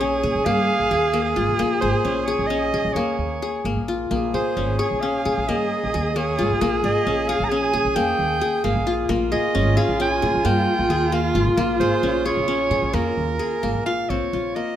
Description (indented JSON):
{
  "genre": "contemporary instrumental, chamber music in an uneven meter",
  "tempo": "265 BPM (eighths)",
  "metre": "11/8",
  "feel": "straight",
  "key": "Bb dorian",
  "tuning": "A4 = 438 Hz",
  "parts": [
    { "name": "bright soprano saxophone", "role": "melody", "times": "0.0-14.8 s", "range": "Bb4 to Bb5", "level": "-25 LUFS", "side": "right 3 dB", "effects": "none" },
    { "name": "rich viola", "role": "second line", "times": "0.0-13.9 s", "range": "F4 to Ab4", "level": "-25 LUFS", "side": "right 3 dB", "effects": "none" },
    { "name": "qanun", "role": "arpeggios", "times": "0.0-14.8 s", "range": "Bb3 to Ab4", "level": "-23 LUFS", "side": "left 4 dB", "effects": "none" },
    { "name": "upright bass", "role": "bass", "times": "0.0-14.5 s", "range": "Ab1 to Bb2", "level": "-26 LUFS", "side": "right 1 dB", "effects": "none" }
  ],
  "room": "moderate recital hall reverb, RT60 1.4 s",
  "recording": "none",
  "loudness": "-19 LUFS",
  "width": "side -10 dB against mid",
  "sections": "0.0-14.1 A section",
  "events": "none",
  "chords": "0.0 Bbm7; 14.1 Bbmadd9"
}